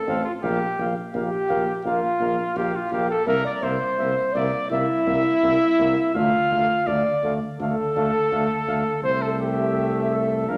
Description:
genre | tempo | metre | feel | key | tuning
classical, brass quintet | 83 BPM | 4/4 | rubato | unclear | A4 = 440 Hz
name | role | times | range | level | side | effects
warm trumpet | second line | 0.0-10.6 s | F4 to F5 | -28 LUFS | equal | none
mellow French horn | accompaniment | 0.0-10.6 s | E4 to D5 | -27 LUFS | equal | none
mellow cornet | melody | 0.1-10.6 s | E5 to F5 | -33 LUFS | equal | none
warm trombone | accompaniment | 0.1-10.6 s | A3 to D4 | -33 LUFS | equal | none
warm tuba | bass | 0.1-10.6 s | A1 to D2 | -29 LUFS | equal | none
room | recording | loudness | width
wet recital hall reverb, RT60 1.5 s | none | -23 LUFS | mono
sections
0.0-10.6 A section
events
none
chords
0.4 Gm7/Bb; 3.3 C7; 6.1 Dm; 9.0 Am/C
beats
| 0.42 1.14 1.84 2.56 | 3.27 3.98 4.70 5.42 | 6.14 6.87 7.59 8.31 | 9.03 9.76 10.49

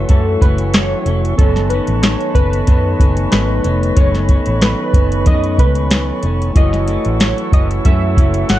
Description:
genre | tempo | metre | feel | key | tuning
indie pop, bedroom pop | 93 BPM | 4/4 | swing 55% on 16ths | unclear | A4 = 440 Hz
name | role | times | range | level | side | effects
warbly lo-fi synth keys | melody | 0.0-8.6 s | A4 to F#5 | -22 LUFS | right 1 dB | analog chorus
electric guitar through a small old amp | accompaniment | 0.0-8.6 s | F#2 to C#4 | -23 LUFS | left 6 dB | wide subtle chorus, warbly pitch drift
mellow tonewheel organ | accompaniment | 0.0-8.6 s | A3 to C#5 | -23 LUFS | right 4 dB | slow rotary speaker, cassette tape
bright flute section | sustained chords | 0.0-8.6 s | E4 to C#6 | -26 LUFS | equal | none
vintage muted fingered electric bass | bass | 0.0-8.6 s | E#1 to F#2 | -17 LUFS | equal | none
soft vintage rhythm box | drums | 0.1-8.6 s | hi-hat, kick drum, snare drum | -13 LUFS | equal | none
room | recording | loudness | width
light reverb | none | -12 LUFS | side -14 dB against mid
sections
0.0-8.6 A section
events
none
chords
0.0 F#m7; 1.4 B9; 6.6 F#m7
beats
0.10 0.74 | 1.39 2.03 2.68 3.32 | 3.97 4.62 5.26 5.91 | 6.55 7.20 7.85 8.49

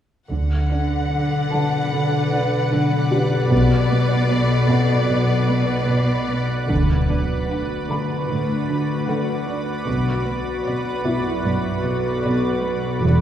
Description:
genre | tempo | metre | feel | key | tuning
cinematic | 76 BPM | 4/4 | straight | unclear | A4 = 440 Hz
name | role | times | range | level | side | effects
rich studio violin section | melody | 0.3-12.8 s | D5 to F#5 | -27 LUFS | left 3 dB | none
shimmering ambient pad | sustained chords | 0.9-13.2 s | F#4 to F#5 | -26 LUFS | right 1 dB | chorus, built-in reverb
dark studio cello section | riff | 0.3-13.2 s | E2 to D4 | -25 LUFS | equal | none
rich studio cello section | bass | 0.3-13.2 s | E2 to D3 | -24 LUFS | equal | none
warm studio double bass section | bass | 0.3-13.2 s | E1 to D2 | -23 LUFS | right 1 dB | none
bowed-like drone | drone | 1.2-13.2 s | B1 to E2 | -24 LUFS | left 1 dB | built-in reverb
felt-muted upright piano | texture | 1.5-13.2 s | E4 to B5 | -32 LUFS | left 1 dB | none
impact | sound effects | 6.7-9.9 s | none | -27 LUFS | equal | none
room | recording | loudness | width
wet scoring stage reverb, RT60 1.6 s | heard from further back in the room | -18 LUFS | side -10 dB against mid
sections
0.3-6.7 A section; 6.7-13.2 B section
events
impact 6.7-9.9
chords
0.3 D6/B; 6.7 D6; 9.9 Bm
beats
| 0.32 1.12 1.93 2.72 | 3.51 4.30 5.09 5.88 | 6.70 7.50 8.30 9.08 | 9.87 10.66 11.45 12.25 | 13.03

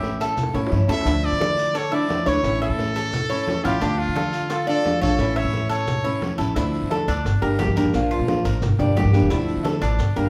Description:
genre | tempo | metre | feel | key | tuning
latin, Cuban son and guajira | 175 BPM | 4/4 | straight | D minor from 6.6 s | A4 = 441 Hz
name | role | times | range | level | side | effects
brilliant trumpet | melody | 0.0-6.4 s | F4 to E5 | -29 LUFS | equal | none
nylon-string guitar | accompaniment | 0.0-10.3 s | D3 to G4 | -27 LUFS | equal | none
Cuban tres | arpeggios | 0.0-10.3 s | D4 to E5 | -29 LUFS | equal | none
upright bass | bass | 0.0-10.3 s | E1 to D3 | -26 LUFS | equal | none
bongos | percussion | 0.0-10.2 s | none | -37 LUFS | equal | none
congas | percussion | 0.0-10.3 s | none | -32 LUFS | equal | none
guiro | percussion | 0.0-10.3 s | none | -46 LUFS | equal | none
maracas | percussion | 0.0-10.3 s | none | -47 LUFS | equal | none
room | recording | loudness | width
wet large studio reverb, RT60 0.9 s | band playing live in one room | -22 LUFS | mono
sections
0.0-6.6 A section; 6.6-10.3 B section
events
drum fill 0.2-1.1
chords
0.0 A; 1.1 Dmadd9; 2.4 A; 3.8 Dm; 5.2 A; 6.6 Dmadd9; 7.3 Gm; 7.9 Bb; 8.6 Gm; 9.3 Dmadd9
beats
0.03 0.38 0.72 | 1.06 1.41 1.75 2.10 | 2.44 2.79 3.13 3.47 | 3.82 4.16 4.50 4.85 | 5.19 5.53 5.88 6.22 | 6.56 6.91 7.25 7.59 | 7.94 8.28 8.62 8.96 | 9.31 9.65 9.99

